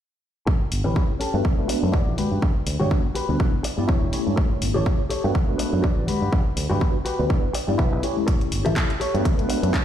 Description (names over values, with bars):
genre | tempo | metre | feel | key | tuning
filtered disco house | 123 BPM | 4/4 | swing 56% on 16ths | A mixolydian | A4 = 441 Hz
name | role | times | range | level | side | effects
direct-recorded clean electric guitar | riff | 0.5-9.8 s | C#4 to E5 | -29 LUFS | left 2 dB | lush chorus, sidechain pumping, low-pass filter
fingered electric bass | bass | 0.5-9.7 s | E1 to G2 | -25 LUFS | equal | sidechain pumping, low-pass filter
electronic kick drum | drums | 0.5-9.8 s | none | -22 LUFS | equal | none
maracas and congas | percussion | 0.5-9.8 s | none | -30 LUFS | left 1 dB | sidechain pumping on perc, low-pass filter on perc
house drum kit | drums | 0.7-9.8 s | handclaps, hi-hat | -32 LUFS | left 1 dB | sidechain pumping on hats
tine electric piano | accompaniment | 1.0-9.7 s | G3 to D5 | -27 LUFS | equal | medium stereo tremolo, phaser, vintage 12-bit sampler grit, sidechain pumping, low-pass filter
room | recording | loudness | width
light reverb | played on a big sound system in a bare room, stone room reverb | -20 LUFS | side -10 dB against mid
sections
0.5-9.8 A section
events
filter sweep 0.5-9.8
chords
0.5 A7; 1.4 D6; 2.2 Gmaj7; 3.4 Em7; 4.4 A7; 5.4 D6; 6.1 Gmaj7; 7.3 Em7; 8.3 A7; 9.3 D6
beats
| 0.47 0.96 1.45 1.94 | 2.42 2.91 3.40 3.89 | 4.38 4.86 5.35 5.84 | 6.33 6.82 7.30 7.79 | 8.28 8.77 9.25 9.74